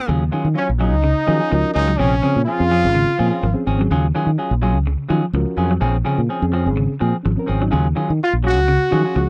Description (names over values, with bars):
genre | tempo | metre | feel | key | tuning
afrobeat | 126 BPM | 4/4 | swing 53% on 16ths | Eb dorian | A4 = 440 Hz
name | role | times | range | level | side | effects
electric guitar at the edge of break-up | arpeggios | 0.1-9.3 s | C3 to Gb3 | -26 LUFS | equal | spring reverb
semi-hollow electric guitar | stabs | 0.1-9.2 s | F3 to Ab4 | -25 LUFS | equal | none
fingered electric bass | bass | 0.1-9.3 s | Ab1 to Eb3 | -21 LUFS | equal | none
clear trombone | melody | 0.6-3.6, 8.2-9.3 s | Db4 to Gb4 | -22 LUFS | equal | none
brilliant trumpet | second line | 0.6-3.6, 8.2-9.3 s | Db4 to Gb4 | -29 LUFS | equal | none
mellow reed electric piano | accompaniment | 1.3-9.3 s | C4 to Bb4 | -27 LUFS | equal | none
room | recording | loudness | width
little or no reverb | dry, close 1970s-style studio recording | -18 LUFS | mono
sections
0.1-9.3 A section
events
none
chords
0.1 Ebm11; 2.0 Bbm9; 3.9 Ebm11; 5.8 Bbm9; 7.7 Ebm11